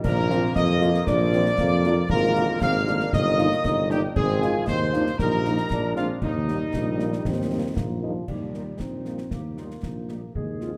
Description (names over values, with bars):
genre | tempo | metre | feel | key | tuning
military-style march for wind band | 116 BPM | 2/4 | straight | Eb major | A4 = 439 Hz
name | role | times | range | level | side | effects
bright wooden piccolo | second line | 0.0-7.7 s | Eb5 to F6 | -35 LUFS | equal | none
mellow woodwind section | second line | 0.0-10.8 s | Eb4 to F5 | -34 LUFS | equal | none
warm euphonium | second line | 0.0-10.8 s | F3 to G4 | -34 LUFS | equal | none
bright trombone section | sustained chords | 0.0-8.0 s | D3 to Eb4 | -36 LUFS | equal | none
mellow tuba | bass | 0.0-10.8 s | G1 to F2 | -28 LUFS | equal | none
clash cymbals, concert bass drum and concert snare drum | drums | 0.0-10.7 s | none | -32 LUFS | equal | none
dark trumpet section | melody | 0.1-10.7 s | Eb4 to F5 | -32 LUFS | equal | none
mellow French horn section | accompaniment | 0.3-10.7 s | D3 to F4 | -34 LUFS | equal | none
room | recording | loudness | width
moderate scoring stage reverb, RT60 2.0 s | none | -24 LUFS | mono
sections
0.0-8.3 A section; 8.3-10.8 A section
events
none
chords
0.0 Bb; 2.1 Bb7/Ab; 3.1 Eb/G; 4.2 Ab; 5.2 Eb/Bb; 5.7 Bb7; 6.2 Eb